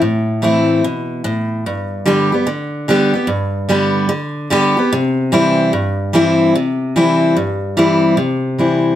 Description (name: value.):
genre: country.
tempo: 147 BPM.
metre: 4/4.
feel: swing 63% on 8ths.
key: C major.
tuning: A4 = 440 Hz.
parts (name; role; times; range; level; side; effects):
picked steel-string acoustic guitar; solo; 0.0-9.0 s; G2 to G4; -13 LUFS; equal; none.
room: light reverb.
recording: none.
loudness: -13 LUFS.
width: side -12 dB against mid.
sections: 0.0-8.2 A section.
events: none.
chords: 0.0 Am; 1.7 G; 4.9 C.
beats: | 0.02 0.43 0.84 1.25 | 1.65 2.06 2.47 2.88 | 3.29 3.69 4.10 4.51 | 4.92 5.32 5.73 6.14 | 6.55 6.95 7.36 7.77 | 8.18 8.59.